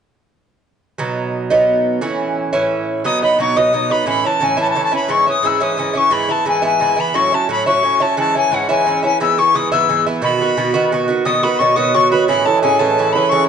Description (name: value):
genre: celtic folk, Celtic jig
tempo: 117 BPM (dotted quarters)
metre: 6/8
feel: straight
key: B mixolydian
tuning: A4 = 440 Hz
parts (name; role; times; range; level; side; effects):
- Irish bouzouki; accompaniment; 1.0-13.5 s; G#2 to F#4; -16 LUFS; right 3 dB; none
- bright reedy mid whistle; melody; 3.1-13.5 s; F#5 to E6; -16 LUFS; left 4 dB; none
- hammered dulcimer; second line; 11.3-13.5 s; G#4 to D#5; -17 LUFS; right 5 dB; none
room: moderate recital hall reverb, RT60 1.8 s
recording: dark, warm production, nothing above 10.5 kHz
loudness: -13 LUFS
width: side -7 dB against mid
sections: 1.0-3.0 A section; 3.0-11.3 B section; 11.3-13.5 B section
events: none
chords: 1.0 B; 2.0 A; 3.0 B; 4.1 A; 5.1 C#m; 6.1 E; 7.1 A6; 8.2 C#m; 9.2 E; 10.2 B; 12.3 A